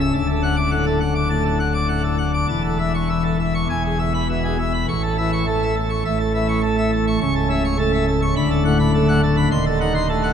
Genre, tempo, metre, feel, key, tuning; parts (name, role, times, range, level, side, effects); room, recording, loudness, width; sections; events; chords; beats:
classical, organ toccata; 103 BPM; 4/4; straight; A major; A4 = 439 Hz
pipe organ, plenum; solo; 0.0-10.3 s; C#1 to E6; -17 LUFS; equal
wet cathedral reverb, RT60 7.0 s; -17 LUFS; side -8 dB against mid
0.0-4.9 A section; 4.9-10.3 B section
0.1 D; 2.5 A/E; 3.7 E; 4.9 A; 7.2 A/C#; 8.4 Bm7/D; 9.5 D#dim7
| 0.14 0.72 1.30 1.89 | 2.49 3.09 3.69 4.29 | 4.88 5.46 6.04 6.62 | 7.20 7.78 8.36 8.93 | 9.51 10.09